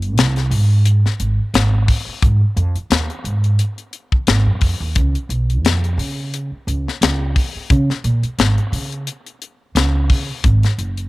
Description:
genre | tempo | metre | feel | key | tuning
straight-eighth soul blues | 88 BPM | 4/4 | swing 55% on 16ths | unclear | A4 = 440 Hz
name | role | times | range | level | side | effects
upright bass | bass | 0.0-11.1 s | Gb1 to Db3 | -16 LUFS | right 1 dB | none
tight funk drum kit | drums | 0.0-11.1 s | hi-hat, kick drum, snare drum | -18 LUFS | left 2 dB | none
room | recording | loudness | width
little or no reverb | 1960s-style stereo | -15 LUFS | side -18 dB against mid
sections
0.0-11.1 A section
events
none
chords
none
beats
0.18 0.86 1.54 | 2.23 2.91 3.60 4.28 | 4.96 5.65 6.33 7.02 | 7.70 8.39 9.07 9.76 | 10.44

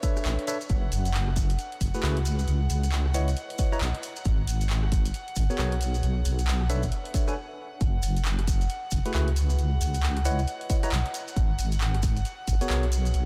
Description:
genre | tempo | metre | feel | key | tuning
UK garage, two-step garage | 135 BPM | 4/4 | swing 61% on 16ths | F# minor | A4 = 443 Hz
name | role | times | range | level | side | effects
clear chamber violin section | sustained chords | 0.0-13.3 s | C#5 to F#5 | -41 LUFS | equal | sidechain pumping
tine electric piano | stabs | 0.0-12.8 s | A3 to A#5 | -37 LUFS | equal | delay
electronic kick drum | drums | 0.0-12.6 s | none | -29 LUFS | equal | none
punchy analog drum machine | drums | 0.0-13.2 s | handclaps, hi-hat, rim click | -39 LUFS | equal | overdrive
maracas | percussion | 0.0-13.2 s | none | -43 LUFS | equal | none
deep soft wobble bass | bass | 0.3-13.3 s | F#1 to C#2 | -28 LUFS | equal | chorus, tube saturation
room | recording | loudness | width
light reverb | none | -27 LUFS | mono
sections
0.0-7.8 A section; 7.8-13.3 A section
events
break 7.4-7.8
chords
0.0 Bm11; 0.7 F#m11; 2.3 C#m11; 4.0 G#m7; 5.8 Bm11; 7.8 F#m11; 9.4 C#m11; 11.1 G#m7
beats
0.25 | 0.70 1.14 1.59 2.03 | 2.48 2.92 3.37 3.81 | 4.25 4.70 5.14 5.59 | 6.03 6.48 6.92 7.37 | 7.81 8.25 8.70 9.14 | 9.59 10.03 10.48 10.92 | 11.37 11.81 12.25 12.70 | 13.14

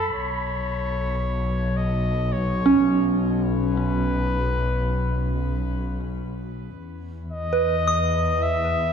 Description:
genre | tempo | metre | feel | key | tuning
ambient | 54 BPM | 3/4 | straight | unclear | A4 = 440 Hz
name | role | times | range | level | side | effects
clear flugelhorn | melody | 0.0-8.9 s | A4 to E5 | -28 LUFS | left 2 dB | shimmer reverb, ping-pong delay
soft synth bell | arpeggios | 0.0-8.9 s | C#4 to D#6 | -24 LUFS | right 3 dB | chorus, phaser, shimmer reverb, ping-pong delay
warm studio double bass section | bass | 0.0-8.9 s | B1 to E2 | -25 LUFS | left 1 dB | none
room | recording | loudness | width
moderate concert hall reverb, RT60 2.4 s | none | -21 LUFS | side -7 dB against mid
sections
0.1-8.9 A section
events
fade-in on flugelhorn 0.1-8.9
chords
0.1 Bsus2; 6.8 Emaj7(no3)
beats
| 0.10 1.21 2.32 | 3.43 4.54 5.65 | 6.76 7.88

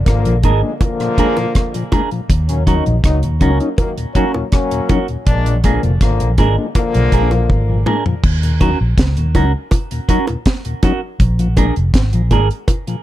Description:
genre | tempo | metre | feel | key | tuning
roots reggae | 81 BPM | 4/4 | straight | Eb minor | A4 = 440 Hz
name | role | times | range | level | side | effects
vintage muted fingered electric bass | bass | 0.0-12.5 s | F1 to Eb2 | -15 LUFS | equal | none
clear trombone section | second line | 0.1-7.8 s | D3 to Eb4 | -21 LUFS | left 3 dB | tape echo, plate reverb
deep reggae drum kit | drums | 0.1-13.0 s | crash cymbal, hi-hat, kick drum, rim click, snare drum, toms | -16 LUFS | equal | none
mellow tonewheel organ | accompaniment | 0.3-13.0 s | Eb2 to Eb4 | -22 LUFS | left 3 dB | none
clean electric guitar | accompaniment | 0.4-12.5 s | Db4 to Bb4 | -22 LUFS | right 5 dB | phaser, tape echo, plate reverb
bongos | percussion | 0.8-12.9 s | none | -25 LUFS | right 2 dB | none
room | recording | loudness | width
light reverb | dark, warm production | -13 LUFS | side -14 dB against mid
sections
0.0-8.2 A section; 8.2-13.0 B section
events
drum fill 7.5-8.2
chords
0.0 Bb7; 2.3 Ebm7; 5.3 Bb7; 8.2 Ebm7; 11.2 Bb7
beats
0.06 0.81 1.55 | 2.29 3.04 3.78 4.53 | 5.27 6.01 6.75 7.49 | 8.23 8.98 9.72 10.46 | 11.20 11.94 12.68

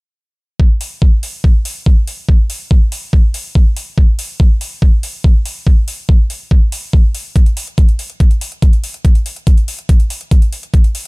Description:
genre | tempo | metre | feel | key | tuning
psychedelic trance | 142 BPM | 4/4 | straight | none | none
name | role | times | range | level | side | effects
electronic kick drum | drums | 0.6-10.8 s | none | -9 LUFS | equal | none
electronic hi-hat | drums | 0.8-11.1 s | none | -26 LUFS | left 1 dB | none
room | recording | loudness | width
little or no reverb | dark, warm production | -11 LUFS | side -31 dB against mid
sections
0.6-11.1 A section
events
none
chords
none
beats
| 0.60 1.02 1.44 1.86 | 2.29 2.71 3.13 3.55 | 3.98 4.40 4.82 5.24 | 5.67 6.09 6.51 6.93 | 7.36 7.78 8.20 8.62 | 9.05 9.47 9.89 10.31 | 10.74

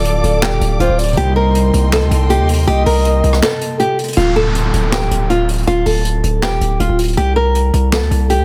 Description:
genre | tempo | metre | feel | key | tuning
hip hop, trap | 160 BPM | 4/4 | half-time | D phrygian | A4 = 441 Hz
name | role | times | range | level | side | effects
nylon-string guitar | melody | 0.0-8.4 s | F4 to Bb4 | -19 LUFS | equal | tape echo
breathy flute-like synth lead | second line | 0.0-3.4 s | C5 to Eb5 | -23 LUFS | equal | chorus, tape echo
concert harp | accompaniment | 0.0-4.4 s | C3 to F4 | -26 LUFS | equal | none
dark symphonic string section | sustained chords | 0.0-4.1 s | Bb3 to D6 | -29 LUFS | equal | none
distorted 808-style bass | bass | 0.0-8.4 s | D1 to Eb2 | -17 LUFS | equal | distortion
jazz brush drum kit | drums | 0.0-8.4 s | handclaps, hi-hat, rim click, snare drum | -25 LUFS | equal | none
downlifter | sound effects | 4.2-7.2 s | none | -28 LUFS | equal | none
room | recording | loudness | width
light reverb, small room ambience | dense, heavily limited modern master | -14 LUFS | mono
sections
0.0-4.2 A section; 4.2-8.4 B section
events
break 3.4-4.2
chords
0.0 Dm; 1.2 Cm7; 4.2 D5; 7.2 C7(no3)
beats
0.05 0.42 0.80 | 1.17 1.55 1.92 2.30 | 2.67 3.05 3.42 3.80 | 4.17 4.55 4.92 5.30 | 5.67 6.05 6.42 6.80 | 7.17 7.55 7.92 8.30

